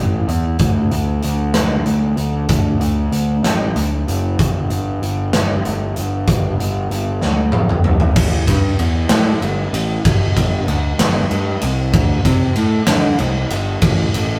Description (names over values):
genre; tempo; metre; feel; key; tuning
quiet-loud alternative rock; 64 BPM (dotted quarters); 6/8; straight; A dorian; A4 = 437 Hz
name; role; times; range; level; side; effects
fuzz picked electric bass; bass; 0.0-14.4 s; F#1 to D3; -20 LUFS; equal; overdrive
big rock drum kit; drums; 0.3-14.3 s; crash cymbal, hi-hat, kick drum, ride cymbal, snare drum, toms; -20 LUFS; equal; none
room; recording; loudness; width
light reverb; rough rehearsal-room recording; -17 LUFS; mono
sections
0.0-8.2 A section; 8.2-14.4 B section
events
drum fill 7.2-8.2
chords
none